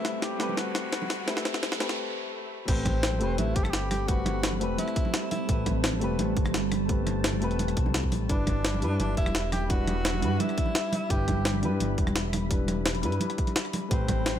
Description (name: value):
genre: liquid drum and bass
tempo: 171 BPM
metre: 4/4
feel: straight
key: A dorian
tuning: A4 = 440 Hz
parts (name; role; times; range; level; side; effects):
- breathy tenor saxophone; melody; 0.0-5.8, 8.3-11.6, 13.9-14.4 s; C4 to A4; -34 LUFS; equal; digital delay
- dark baby grand piano; accompaniment; 0.0-14.4 s; G3 to B4; -33 LUFS; left 3 dB; ping-pong delay
- glassy FM pad; sustained chords; 0.0-14.4 s; G3 to B5; -35 LUFS; right 1 dB; ensemble chorus, built-in reverb, phaser, sidechain pumping
- smooth gliding synth bass; bass; 0.0-14.4 s; E1 to G2; -30 LUFS; equal; high-pass filter
- jungle sampler-style drum kit; drums; 0.0-14.3 s; crash cymbal, hi-hat, rim click, snare drum; -31 LUFS; left 1 dB; none
- riser and swell; sound effects; 0.0-2.7 s; none; -38 LUFS; right 1 dB; none
- congas; percussion; 0.5-14.4 s; none; -35 LUFS; right 2 dB; none
- electronic kick drum; drums; 2.7-14.2 s; none; -28 LUFS; equal; none
room: light reverb, digital ambience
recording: high-pass filter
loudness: -25 LUFS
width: side -10 dB against mid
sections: 0.0-2.7 A section; 2.7-14.4 B section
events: build-up 0.0-2.7; drum fill 0.0-2.0; riser 0.0-2.0; break 2.0-2.7; swell 2.0-2.7; drop 2.7-14.4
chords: 0.0 Am9; 8.3 G6